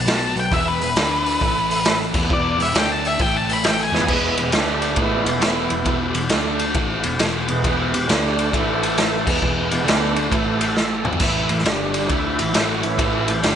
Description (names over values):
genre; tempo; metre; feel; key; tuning
blues rock power trio and southern rock; 135 BPM; 4/4; swing 65% on 8ths; unclear; A4 = 440 Hz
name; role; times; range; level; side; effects
octave-fuzz lead guitar; melody; 0.0-4.1 s; B4 to B5; -22 LUFS; left 2 dB; distortion, slapback echo
overdriven tonewheel organ; sustained chords; 0.0-13.6 s; D3 to F#5; -25 LUFS; right 4 dB; slow rotary speaker
sludgy distorted guitar; riff; 0.0-13.6 s; E2 to E4; -24 LUFS; left 1 dB; overdrive
vintage muted picked electric bass; bass; 0.0-13.6 s; E1 to E2; -29 LUFS; equal; none
raw garage drum kit; drums; 0.1-13.6 s; crash cymbal, hi-hat, kick drum, ride cymbal, snare drum, splash cymbal, toms; -21 LUFS; equal; none
room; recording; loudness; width
moderate lush hall reverb, RT60 1.7 s, small room ambience; big arena sound, nothing above 10.9 kHz; -17 LUFS; side -8 dB against mid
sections
0.0-4.1 A section; 4.1-13.6 A section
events
lead electric guitar solo 0.0-4.1; drum fill 3.9, 10.8-11.2; tonewheel organ solo 4.1-13.6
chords
0.0 B5; 0.5 E; 1.0 D5; 1.4 A5; 2.1 E; 2.7 D5; 3.2 A5; 3.9 E; 4.5 D5; 5.0 E; 6.3 D5; 6.8 E; 8.1 D5; 8.5 A5; 9.2 E; 9.9 D5; 10.3 A5; 11.0 E5; 11.2 A5; 11.7 G5; 12.1 A5